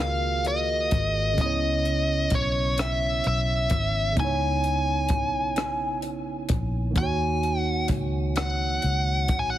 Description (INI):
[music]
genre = slow six-eight R&B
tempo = 43 BPM (dotted quarters)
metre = 6/8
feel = straight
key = unclear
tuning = A4 = 440 Hz
[part]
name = bluesy overdriven lead guitar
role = melody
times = 0.0-9.6 s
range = Db5 to Ab5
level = -26 LUFS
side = left 1 dB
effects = distortion
[part]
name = barky tine electric piano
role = accompaniment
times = 0.0-9.6 s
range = Db3 to Db5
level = -30 LUFS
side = right 5 dB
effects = overdrive, lush chorus
[part]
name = vintage muted fingered electric bass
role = bass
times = 0.0-9.6 s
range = Ab1 to Eb2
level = -28 LUFS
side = equal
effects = none
[part]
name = compact cocktail drum kit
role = drums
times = 0.0-9.5 s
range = hi-hat, kick drum, rim click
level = -28 LUFS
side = left 1 dB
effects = none
[sound]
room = light reverb, small room ambience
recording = heavily compressed radio sound, multiband compression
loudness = -22 LUFS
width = side -13 dB against mid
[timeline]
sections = 0.0-9.6 A section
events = none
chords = 0.0 Ebm9; 1.4 Dbm9; 7.0 Ebm7